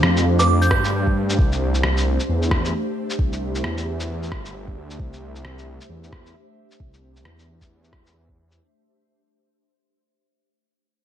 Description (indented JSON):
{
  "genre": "future garage",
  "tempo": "133 BPM",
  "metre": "4/4",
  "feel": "swing 60% on 16ths",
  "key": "unclear",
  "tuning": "A4 = 440 Hz",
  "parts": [
    { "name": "ethereal airy pad", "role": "sustained chords", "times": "0.0-8.6 s", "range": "A3 to F5", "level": "-28 LUFS", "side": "equal", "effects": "ensemble chorus, built-in reverb, sidechain pumping" },
    { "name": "swelling detuned saw bass", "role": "bass", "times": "0.0-8.6 s", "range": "G1 to G2", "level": "-22 LUFS", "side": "equal", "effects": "tube saturation, sidechain pumping" },
    { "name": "electronic rim click, shaker and woodblock", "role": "drums", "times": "0.0-8.6 s", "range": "none", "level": "-26 LUFS", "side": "equal", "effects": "studio reverb, gated reverb" },
    { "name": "glassy synth bell", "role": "melody", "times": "0.4-0.8 s", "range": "D6 to G6", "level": "-24 LUFS", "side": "right 3 dB", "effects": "chorus, ping-pong delay" },
    { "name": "electronic kick drum", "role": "drums", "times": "0.7-8.4 s", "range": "none", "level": "-21 LUFS", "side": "equal", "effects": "overdrive, studio reverb" }
  ],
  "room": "light reverb, digital ambience",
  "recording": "bright 1980s-style digital production",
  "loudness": "-18 LUFS",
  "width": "side -10 dB against mid",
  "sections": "0.0-8.6 A section",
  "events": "fade-out 0.0-8.6",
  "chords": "0.0 Dm; 1.4 C",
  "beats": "0.03 0.48 0.93 | 1.38 1.83 2.29 2.74 | 3.19 3.64 4.09 4.54 | 4.99 5.44 5.89 6.34 | 6.80 7.25 7.70 8.15"
}